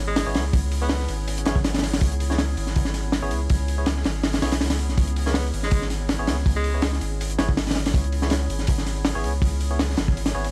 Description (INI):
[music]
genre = drum and bass, jungle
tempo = 162 BPM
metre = 4/4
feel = swing 54% on 16ths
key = C# minor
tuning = A4 = 439 Hz
[part]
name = saturated sub bass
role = bass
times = 0.0-10.5 s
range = G#1 to C#2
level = -28 LUFS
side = equal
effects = none
[part]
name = clear tenor saxophone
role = melody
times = 0.1-1.2, 5.3-6.9 s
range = G#3 to B3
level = -34 LUFS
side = equal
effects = vintage 12-bit sampler grit, dub echo
[part]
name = crunchy breakbeat drum kit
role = drums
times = 0.2-10.5 s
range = hi-hat, kick drum, snare drum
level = -26 LUFS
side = equal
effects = none
[part]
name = barky tine electric piano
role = stabs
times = 0.3-10.5 s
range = B3 to C#5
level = -36 LUFS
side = equal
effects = dub echo
[sound]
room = small room ambience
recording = vinyl crackle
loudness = -23 LUFS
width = mono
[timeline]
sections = 0.0-10.5 A section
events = break 10.2-10.5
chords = 0.0 C#m7